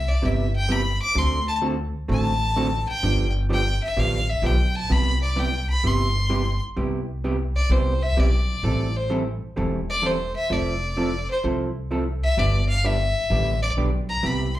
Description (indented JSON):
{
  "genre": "country, western swing",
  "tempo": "128 BPM",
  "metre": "4/4",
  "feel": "swing 68% on 8ths",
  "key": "C major",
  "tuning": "A4 = 439 Hz",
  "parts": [
    { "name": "clear fiddle", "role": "melody", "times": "0.0-14.6 s", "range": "C5 to D6", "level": "-25 LUFS", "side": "left 1 dB", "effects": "slapback echo" },
    { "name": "upright bass", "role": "bass", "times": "0.0-14.6 s", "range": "E1 to D2", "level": "-24 LUFS", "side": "equal", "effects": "none" },
    { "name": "vintage hollow-body jazz guitar", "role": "accompaniment", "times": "0.2-14.5 s", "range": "C3 to A4", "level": "-27 LUFS", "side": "right 2 dB", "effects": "slapback echo" }
  ],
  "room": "light reverb",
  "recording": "live gig heard through the venue's PA, club reverb",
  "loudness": "-20 LUFS",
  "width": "side -14 dB against mid",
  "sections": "0.0-6.8 A section; 6.8-14.6 A section",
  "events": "fiddle solo 0.0-6.8, 6.8-14.6",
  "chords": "0.0 Cmaj7; 1.2 D7; 3.0 G7; 4.9 Cmaj7; 8.6 Am7; 10.5 Fmaj7; 12.4 G"
}